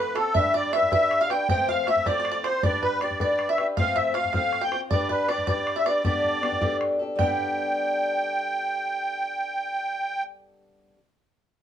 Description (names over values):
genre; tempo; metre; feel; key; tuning
celtic folk, Celtic jig; 105 BPM (dotted quarters); 6/8; straight; G mixolydian; A4 = 440 Hz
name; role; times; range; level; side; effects
musette accordion; melody; 0.0-10.2 s; A4 to G5; -24 LUFS; equal; none
bluegrass banjo; second line; 0.0-10.9 s; A4 to G5; -31 LUFS; right 5 dB; none
fingerpicked swing-style acoustic guitar; accompaniment; 0.0-11.0 s; F3 to C5; -28 LUFS; left 2 dB; none
bodhran; percussion; 0.2-7.4 s; none; -30 LUFS; left 1 dB; none
room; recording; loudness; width
moderate small room reverb, RT60 0.6 s; band playing live in one room; -22 LUFS; side -9 dB against mid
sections
0.0-7.2 A section; 7.2-9.5 B section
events
none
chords
0.3 G; 1.5 F; 2.6 G; 3.8 F; 4.9 G; 6.0 Gadd9